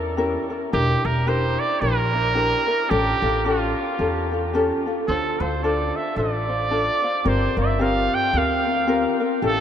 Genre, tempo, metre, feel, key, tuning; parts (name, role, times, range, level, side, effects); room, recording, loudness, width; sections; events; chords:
Hawaiian; 110 BPM; 4/4; swing 59% on 8ths; A4 = 440 Hz
warm trumpet; melody; 0.0-9.6 s; F4 to G5; -23 LUFS; right 2 dB
ukulele; accompaniment; 0.0-9.6 s; C4 to C5; -23 LUFS; left 2 dB
upright bass; bass; 0.0-9.6 s; E1 to E2; -26 LUFS; equal
wet huge ambient reverb, RT60 8.5 s; in a vast, echoing space; -19 LUFS; side -9 dB against mid
0.0-9.6 A section
0.0 A7b9; 0.7 Em7b5; 2.9 A7b13; 5.1 Dm7; 7.3 Gm7